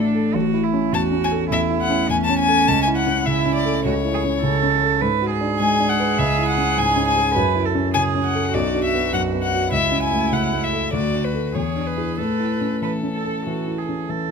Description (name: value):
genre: quick classical-period movement for piano trio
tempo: 102 BPM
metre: 4/4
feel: rubato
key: A major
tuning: A4 = 442 Hz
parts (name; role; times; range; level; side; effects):
- rich violin; melody; 0.0-14.1 s; A4 to A5; -22 LUFS; left 6 dB; none
- rich cello; second line; 0.0-14.3 s; C#4 to B4; -24 LUFS; right 11 dB; none
- dark grand piano; accompaniment; 0.0-14.3 s; A1 to B4; -21 LUFS; equal; none
room: moderate recital hall reverb, RT60 1.4 s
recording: close, detailed microphones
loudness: -18 LUFS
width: side -5 dB against mid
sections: 0.0-14.3 A section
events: none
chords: 0.3 A; 2.7 A/C#; 5.0 G#m7b5; 6.2 C#m; 7.4 F#m7; 8.5 Bm; 9.7 A/C#; 10.9 D; 11.5 E7; 12.2 A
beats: | 0.35 0.93 1.52 2.09 | 2.67 3.25 3.84 4.43 | 5.01 5.60 6.19 6.78 | 7.36 7.95 8.54 9.13 | 9.72 10.32 10.93 11.54 | 12.18 12.82 13.45 14.09